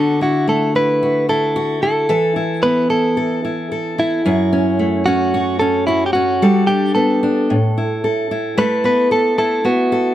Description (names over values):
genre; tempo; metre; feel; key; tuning
pop; 111 BPM; 4/4; straight; unclear; A4 = 440 Hz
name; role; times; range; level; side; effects
direct-recorded clean electric guitar; melody; 0.0-10.1 s; E4 to B4; -17 LUFS; equal; none
fingerpicked steel-string acoustic guitar; accompaniment; 0.0-10.1 s; F#2 to A4; -17 LUFS; equal; none
room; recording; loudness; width
light reverb; close, detailed microphones; -14 LUFS; side -12 dB against mid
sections
0.0-8.6 A section; 8.6-10.1 B section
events
none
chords
0.0 Dadd9; 2.1 Esus4; 4.3 F#m; 6.4 Gadd9; 7.5 A5; 8.6 Asus2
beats
0.48 1.02 1.56 | 2.10 2.63 3.17 3.71 | 4.25 4.79 5.33 5.87 | 6.41 6.95 7.49 8.03 | 8.57 9.11 9.65